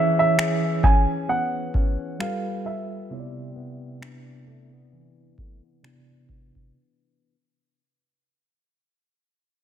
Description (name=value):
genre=contemporary R&B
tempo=66 BPM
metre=4/4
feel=swing 58% on 16ths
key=unclear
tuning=A4 = 440 Hz
part: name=clear baby grand piano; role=melody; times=0.0-5.8 s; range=E5 to G#5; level=-24 LUFS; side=right 3 dB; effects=low-pass filter
part: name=mellow tine electric piano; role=accompaniment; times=0.0-6.8 s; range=C3 to D5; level=-30 LUFS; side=right 4 dB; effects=medium stereo tremolo, low-pass filter
part: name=nylon-string guitar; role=arpeggios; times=0.0-7.3 s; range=C3 to G#4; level=-31 LUFS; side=left 6 dB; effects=low-pass filter
part: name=booming analog drum machine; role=drums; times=0.4-6.7 s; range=finger snaps, kick drum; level=-21 LUFS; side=equal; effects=none
room=little or no reverb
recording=none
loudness=-21 LUFS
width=side -10 dB against mid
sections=0.0-6.7 A section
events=fade-out 0.0-6.7; filter sweep 0.0-6.7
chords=0.0 E6; 2.2 G9; 3.1 Cmaj9